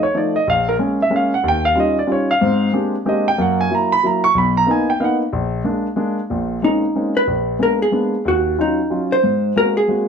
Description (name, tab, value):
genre	jazz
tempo	185 BPM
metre	3/4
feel	swing 62% on 8ths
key	Bb minor from 6.3 s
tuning	A4 = 441 Hz
part	warm concert grand piano	accompaniment	0.0-10.1 s	Bb1 to Db6	-16 LUFS	equal	none
part	hollow-body jazz guitar	melody	6.6-10.1 s	Eb4 to C5	-17 LUFS	equal	none
room	wet studio reverb, RT60 0.6 s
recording	none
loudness	-15 LUFS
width	side -6 dB against mid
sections	0.0-6.3 A section; 6.3-10.1 B section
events	none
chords	0.5 Bbm7; 1.4 Eb9; 2.4 Abmaj9#11; 3.4 Gb7; 4.4 Bmaj7; 5.3 Bb7; 6.3 Bbm11; 7.3 Bb7b9; 8.3 Ebm9; 9.2 Ab9